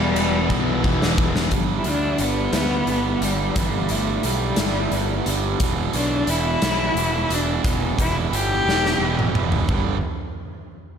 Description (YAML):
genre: quiet-loud alternative rock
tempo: 59 BPM (dotted quarters)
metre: 6/8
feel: straight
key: G major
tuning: A4 = 439 Hz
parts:
  - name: rich cello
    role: melody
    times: 0.0-9.3 s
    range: E3 to G4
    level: -24 LUFS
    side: left 3 dB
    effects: slapback echo
  - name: distorted electric guitar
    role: riff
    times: 0.0-10.0 s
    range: E2 to G3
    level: -26 LUFS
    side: right 11 dB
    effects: overdrive, slapback echo
  - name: thick fuzz guitar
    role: riff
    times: 0.0-1.5 s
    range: E2 to E3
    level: -25 LUFS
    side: left 10 dB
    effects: distortion
  - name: fuzz picked electric bass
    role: bass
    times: 0.0-10.0 s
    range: E1 to D2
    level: -25 LUFS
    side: equal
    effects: overdrive
  - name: big rock drum kit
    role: drums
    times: 0.2-9.8 s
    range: hi-hat, kick drum, ride cymbal, snare drum, toms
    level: -24 LUFS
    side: equal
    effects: none
  - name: electric guitar through a small old amp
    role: arpeggios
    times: 1.5-5.6 s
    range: G2 to E4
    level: -31 LUFS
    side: left 1 dB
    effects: tremolo
room: moderate recital hall reverb, RT60 1.7 s, studio ambience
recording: big arena sound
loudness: -19 LUFS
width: side -7 dB against mid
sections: 0.0-1.5 A section; 1.5-9.7 B section; 9.7-11.0 C section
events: drum fill 0.5-1.5, 8.7-9.7; cello solo 1.5-9.7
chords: 0.0 Em; 1.5 G6; 5.6 Em; 9.7 G5